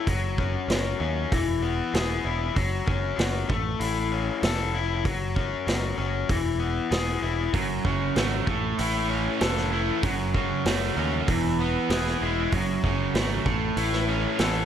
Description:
classic rock; 96 BPM; 4/4; straight; F# minor; A4 = 441 Hz
raw garage guitar; riff; 0.0-14.7 s; E3 to A4; -27 LUFS; left 7 dB; overdrive
picked electric bass; bass; 0.1-14.7 s; E1 to D#2; -29 LUFS; right 1 dB
vintage drum kit; drums; 0.1-14.5 s; hi-hat, kick drum, snare drum; -29 LUFS; right 1 dB
biting overdriven guitar; riff; 7.5-14.7 s; E2 to C#4; -28 LUFS; right 13 dB
light reverb; -23 LUFS; side -9 dB against mid
0.0-14.7 A section
0.1 F#5; 1.3 E; 2.6 F#5; 3.5 A; 5.1 F#5; 6.3 E; 7.5 F#m; 8.5 A; 10.0 F#m; 11.3 E; 12.5 F#m; 13.5 A
| 0.07 0.69 1.32 1.94 | 2.56 3.19 3.81 4.43 | 5.06 5.68 6.30 6.92 | 7.55 8.17 8.79 9.41 | 10.04 10.66 11.28 11.90 | 12.52 13.15 13.77 14.39

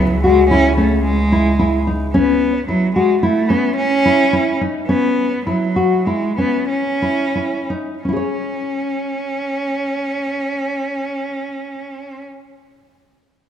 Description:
contemporary instrumental, chamber music in an uneven meter; 86-111 BPM; 5/4; straight; C# minor; A4 = 440 Hz
rich cello; melody; 0.0-12.2 s; F#3 to C#4; -18 LUFS; right 2 dB
nylon-string guitar; arpeggios; 0.0-12.5 s; C#4 to C#5; -18 LUFS; left 2 dB
rich double bass; bass; 0.0-2.1 s; C#2; -20 LUFS; equal
moderate scoring stage reverb, RT60 2.0 s; -15 LUFS; side -9 dB against mid
0.0-8.0 A section; 8.0-11.5 B section
slowing down 3.2-8.0
0.0 C#m; 8.0 C#5
0.51 1.05 1.60 | 2.14 2.68 3.23 3.77 4.32 | 4.88 5.46 6.07 6.69 7.35 | 8.04 8.73 9.42 10.10 10.79

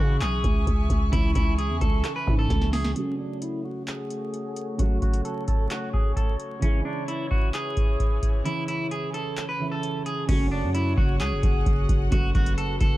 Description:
hip hop, trap; 131 BPM; 4/4; half-time; F# minor; A4 = 440 Hz
electric guitar at the edge of break-up; melody; 0.0-13.0 s; C#4 to B4; -30 LUFS; equal; low-pass filter, tape echo
dark concert grand piano; accompaniment; 0.0-13.0 s; C#3 to F#4; -33 LUFS; right 3 dB; low-pass filter
warm chamber string section; sustained chords; 0.0-13.0 s; E3 to C#6; -36 LUFS; left 2 dB; low-pass filter
growling 808-style bass; bass; 0.0-2.9, 10.3-13.0 s; F#1 to C#3; -25 LUFS; equal
booming analog drum machine; drums; 0.2-13.0 s; crash cymbal, handclaps, hi-hat, kick drum, rim click, snare drum; -23 LUFS; equal
little or no reverb; dark, warm production, vinyl crackle; -22 LUFS; side -16 dB against mid
0.0-3.0 A section; 3.0-10.3 B section; 10.3-13.0 A section
drum fill 2.5-3.0; filter sweep 3.0-10.3; break 8.5-10.3
0.0 C#m; 3.0 F#m; 6.6 C#m; 10.3 F#m
0.21 0.67 | 1.13 1.59 2.04 2.50 | 2.96 3.42 3.88 4.33 | 4.79 5.25 5.71 6.17 | 6.62 7.08 7.54 8.00 | 8.46 8.91 9.37 9.83 | 10.29 10.75 11.20 11.66 | 12.12 12.58

